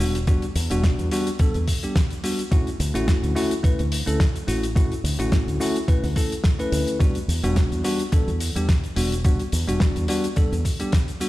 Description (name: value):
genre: nu-disco, nu disco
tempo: 107 BPM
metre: 4/4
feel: swing 55% on 16ths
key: E dorian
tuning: A4 = 439 Hz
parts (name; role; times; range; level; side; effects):
- bell-like tine electric piano; accompaniment; 0.0-11.3 s; G3 to B4; -26 LUFS; equal; sidechain pumping, dub echo
- fingered electric bass with an envelope filter; bass; 0.0-10.6 s; E1 to E2; -24 LUFS; equal; tube saturation, sidechain pumping
- damped 70s drum kit; drums; 0.0-11.3 s; hi-hat, shaker, snare drum; -30 LUFS; left 1 dB; small room reverb
- electronic kick drum; drums; 0.3-11.1 s; none; -20 LUFS; equal; small room reverb
room: little or no reverb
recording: played on a big sound system in a bare room, stone room reverb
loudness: -20 LUFS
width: side -17 dB against mid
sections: 0.0-11.3 A section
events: none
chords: 0.0 Em7; 2.5 Dmaj7; 7.0 Em7